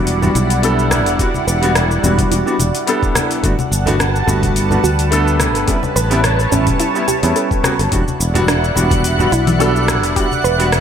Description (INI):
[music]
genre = sunset chillout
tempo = 107 BPM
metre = 4/4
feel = swing 54% on 16ths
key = E dorian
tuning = A4 = 441 Hz
[part]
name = warm grand piano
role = accompaniment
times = 0.0-10.7 s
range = G3 to A4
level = -19 LUFS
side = equal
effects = auto-pan, ping-pong delay
[part]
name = lush unison pad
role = sustained chords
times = 0.0-10.8 s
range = G3 to A5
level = -20 LUFS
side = right 1 dB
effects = chorus, phaser
[part]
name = sustaining fretless electric bass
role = bass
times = 0.0-10.8 s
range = E1 to E2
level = -17 LUFS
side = equal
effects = none
[part]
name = smooth R&B drum kit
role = drums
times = 0.1-10.8 s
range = congas, hi-hat, rim click, shaker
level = -21 LUFS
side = left 1 dB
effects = gated reverb
[part]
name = congas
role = percussion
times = 0.2-10.8 s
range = none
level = -25 LUFS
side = left 3 dB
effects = none
[part]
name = soft round pluck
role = arpeggios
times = 0.4-10.7 s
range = C#4 to B4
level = -23 LUFS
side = right 4 dB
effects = chorus, ping-pong delay
[part]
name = electronic kick drum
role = drums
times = 1.2-10.3 s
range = none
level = -19 LUFS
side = equal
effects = none
[part]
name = twinkling granular texture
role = texture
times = 8.0-10.8 s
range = F#5 to F#6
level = -25 LUFS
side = right 1 dB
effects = built-in reverb, lush chorus
[sound]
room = moderate plate reverb, RT60 2.3 s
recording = bright 1980s-style digital production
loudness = -13 LUFS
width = side -8 dB against mid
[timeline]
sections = 0.0-10.8 A section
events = filter sweep on synth pluck 0.0-10.8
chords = 0.0 Em9; 3.4 Gmaj9; 5.7 A9; 7.9 Em9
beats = 0.07 0.63 | 1.19 1.75 2.31 2.87 | 3.44 4.00 4.56 5.12 | 5.68 6.24 6.80 7.36 | 7.92 8.48 9.04 9.60 | 10.16 10.72